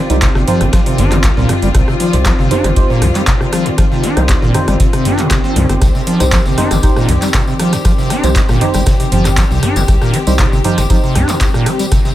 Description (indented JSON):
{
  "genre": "acid house",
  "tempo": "118 BPM",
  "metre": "4/4",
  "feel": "straight",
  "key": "C minor",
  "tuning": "A4 = 439 Hz",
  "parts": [
    { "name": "warm studio string section", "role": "sustained chords", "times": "0.0-12.1 s", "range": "Eb3 to G4", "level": "-20 LUFS", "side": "left 2 dB", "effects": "sidechain pumping" },
    { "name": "granular cloud pad", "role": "texture", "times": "0.0-12.1 s", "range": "C4 to D5", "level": "-24 LUFS", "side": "left 1 dB", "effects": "built-in reverb, sidechain pumping" },
    { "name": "acid bass, square", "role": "riff", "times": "0.1-12.1 s", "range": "C2 to Eb4", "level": "-17 LUFS", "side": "right 1 dB", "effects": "lush chorus, analog delay" },
    { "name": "deep mellow chord stab", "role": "stabs", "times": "0.1-11.0 s", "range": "Eb4 to C5", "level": "-21 LUFS", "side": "right 3 dB", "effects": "chorus, cassette tape, analog delay" },
    { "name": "round analog bass", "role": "bass", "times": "0.1-11.3 s", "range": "G1 to C2", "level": "-15 LUFS", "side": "equal", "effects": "sidechain pumping" },
    { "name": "booming analog drum machine", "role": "drums", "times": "0.1-12.0 s", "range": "handclaps, hi-hat, rim click, toms", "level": "-19 LUFS", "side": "equal", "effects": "none" },
    { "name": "breakbeat sampler-style drum kit", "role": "drums", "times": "0.2-12.1 s", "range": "ride cymbal, snare drum", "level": "-31 LUFS", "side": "right 2 dB", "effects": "none" },
    { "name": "electronic kick drum", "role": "drums", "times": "0.2-12.0 s", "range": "none", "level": "-14 LUFS", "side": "equal", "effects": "none" },
    { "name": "tambourine", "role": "percussion", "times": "5.8-12.1 s", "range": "none", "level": "-28 LUFS", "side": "left 2 dB", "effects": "analog delay" }
  ],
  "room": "light reverb",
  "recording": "echo-heavy mix",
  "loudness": "-10 LUFS",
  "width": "side -14 dB against mid",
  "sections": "0.0-12.1 A section",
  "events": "none",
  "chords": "0.0 Cm"
}